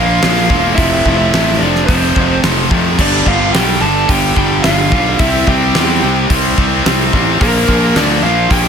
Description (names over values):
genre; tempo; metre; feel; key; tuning
hard rock; 109 BPM; 4/4; straight; unclear; A4 = 440 Hz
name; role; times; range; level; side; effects
lead guitar through a small cranked amp; melody; 0.0-8.7 s; Bb4 to A5; -18 LUFS; right 1 dB; overdrive, slapback echo
dark smooth lead guitar; second line; 0.0-8.7 s; Bb3 to A4; -22 LUFS; right 1 dB; overdrive, slapback echo
crunchy overdriven guitar; riff; 0.0-8.7 s; F2 to E4; -21 LUFS; right 1 dB; spring reverb
tight distorted guitar; riff; 0.0-8.7 s; F2 to C4; -17 LUFS; left 16 dB; distortion
tight distorted guitar; riff; 0.0-8.7 s; F2 to C4; -19 LUFS; right 14 dB; distortion
fuzz fingered electric bass; bass; 0.0-8.7 s; E1 to F2; -17 LUFS; equal; overdrive
gated 80s drum kit; drums; 0.2-8.6 s; crash cymbal, hi-hat, kick drum, snare drum; -16 LUFS; equal; none
room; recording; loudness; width
light reverb; none; -10 LUFS; side -7 dB against mid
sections
0.0-8.7 A section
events
none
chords
0.0 Bb; 0.8 F; 3.0 G; 5.2 C; 7.4 Bb